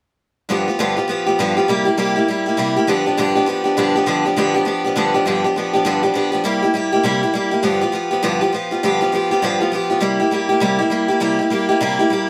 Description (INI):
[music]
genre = rock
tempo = 202 BPM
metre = 4/4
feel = swing 62% on 8ths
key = G mixolydian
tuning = A4 = 436 Hz
[part]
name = picked steel-string acoustic guitar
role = solo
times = 0.5-12.3 s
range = G2 to G4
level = -18 LUFS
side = equal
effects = none
[sound]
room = light reverb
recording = band playing live in one room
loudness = -18 LUFS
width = mono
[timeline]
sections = 0.5-5.3 A section; 5.3-12.3 B section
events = none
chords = 0.5 G7; 1.7 C7; 2.9 G7; 6.5 C7; 7.6 G7; 10.0 C7